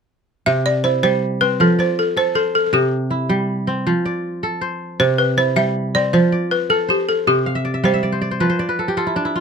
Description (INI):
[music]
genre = west african traditional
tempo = 106 BPM (dotted quarters)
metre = 12/8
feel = straight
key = C major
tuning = A4 = 440 Hz
[part]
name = balafon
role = melody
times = 0.5-8.6 s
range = G4 to E5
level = -17 LUFS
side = equal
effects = none
[part]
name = kora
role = arpeggios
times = 0.5-9.4 s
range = C3 to F5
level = -19 LUFS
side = right 1 dB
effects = none
[sound]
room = light reverb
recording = close, detailed microphones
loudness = -16 LUFS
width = side -6 dB against mid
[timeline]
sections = 0.5-9.4 A section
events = kora fill 7.5-9.4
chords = 0.5 C; 1.6 F; 2.7 C; 3.9 F; 5.0 C; 6.1 F; 7.3 C5; 8.4 F